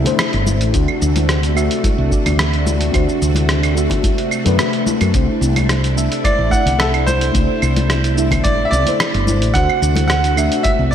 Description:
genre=sunset chillout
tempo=109 BPM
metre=4/4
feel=straight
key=C lydian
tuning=A4 = 440 Hz
part: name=mellow FM electric piano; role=accompaniment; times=0.0-10.9 s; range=A3 to E5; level=-21 LUFS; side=moving between left 6 dB and right 1 dB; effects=chorus, phaser, auto-pan, digital delay, slapback echo
part: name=soft string machine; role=sustained chords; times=0.0-10.9 s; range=C3 to F#4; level=-23 LUFS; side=right 1 dB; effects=ensemble chorus
part: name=woody fretless electric bass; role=bass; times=0.0-10.9 s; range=G1 to F#2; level=-17 LUFS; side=equal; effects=lush chorus
part: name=dusty soul sampler-style drum kit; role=drums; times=0.1-10.9 s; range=claves, hi-hat, rim click, shaker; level=-22 LUFS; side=right 1 dB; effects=overdrive
part: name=congas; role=percussion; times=0.1-10.8 s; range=none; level=-26 LUFS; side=left 3 dB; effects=none
part: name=electronic kick drum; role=drums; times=0.7-10.9 s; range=none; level=-19 LUFS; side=equal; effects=none
part: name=bright baby grand piano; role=melody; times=6.2-10.9 s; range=A4 to F#5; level=-19 LUFS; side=right 2 dB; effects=digital delay, slapback echo
room=moderate lush hall reverb, RT60 1.6 s, digital ambience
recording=big arena sound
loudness=-13 LUFS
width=side -9 dB against mid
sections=0.0-10.9 A section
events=none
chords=0.0 C69; 0.7 D7; 5.1 C69; 9.5 D7

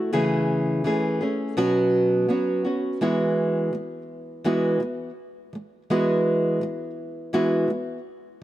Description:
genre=pop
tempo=83 BPM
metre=4/4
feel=straight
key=E major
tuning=A4 = 440 Hz
part: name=nylon-string guitar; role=solo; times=0.0-8.0 s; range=B2 to G#4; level=-22 LUFS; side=equal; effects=none
room=moderate plate reverb, RT60 2.6 s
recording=dark, warm production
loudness=-21 LUFS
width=side -14 dB against mid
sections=0.0-3.0 A section; 3.0-8.4 B section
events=none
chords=0.1 Amaj7/C#; 1.6 Bsus2; 3.0 Eadd9

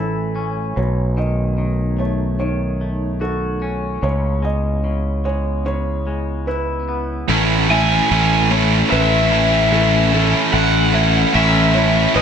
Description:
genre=post-rock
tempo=74 BPM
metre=4/4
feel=straight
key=A lydian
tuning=A4 = 439 Hz
part: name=warbly tape-like pad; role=sustained chords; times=0.0-12.2 s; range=A3 to G#5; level=-30 LUFS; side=right 1 dB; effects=chorus, built-in reverb
part: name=felt-muted upright piano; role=arpeggios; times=0.0-12.2 s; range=A4 to E5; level=-27 LUFS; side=right 4 dB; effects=slapback echo
part: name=twangy electric guitar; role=arpeggios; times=0.0-7.3 s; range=B2 to F#4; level=-27 LUFS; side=left 4 dB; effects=slapback echo
part: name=growling fingered electric bass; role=bass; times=0.0-12.2 s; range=A1 to C#2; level=-19 LUFS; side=equal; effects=overdrive
part: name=distorted electric guitar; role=riff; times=7.3-12.2 s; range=A2 to E4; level=-18 LUFS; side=right 12 dB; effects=overdrive
part: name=fuzz guitar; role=riff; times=7.3-12.2 s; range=A2 to E4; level=-20 LUFS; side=left 13 dB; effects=distortion
part: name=raw garage guitar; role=melody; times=7.7-12.2 s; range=D#5 to G#5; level=-19 LUFS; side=equal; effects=overdrive, slapback echo
room=light reverb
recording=none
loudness=-15 LUFS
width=side -7 dB against mid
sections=0.0-7.3 A section; 7.3-12.2 B section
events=none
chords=0.0 Amaj7; 0.8 B9; 4.0 C#m7; 7.3 Amaj7

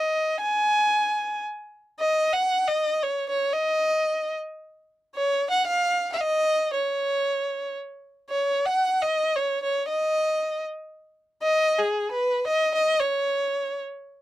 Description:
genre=mexican folk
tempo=114 BPM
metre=3/4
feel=straight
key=unclear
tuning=A4 = 442 Hz
part: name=rich violin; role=solo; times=0.0-13.8 s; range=G#4 to G#5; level=-22 LUFS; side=equal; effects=none
room=light reverb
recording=dry, close 1970s-style studio recording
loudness=-22 LUFS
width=side -14 dB against mid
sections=0.0-8.3 A section; 8.3-14.2 A section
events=none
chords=none

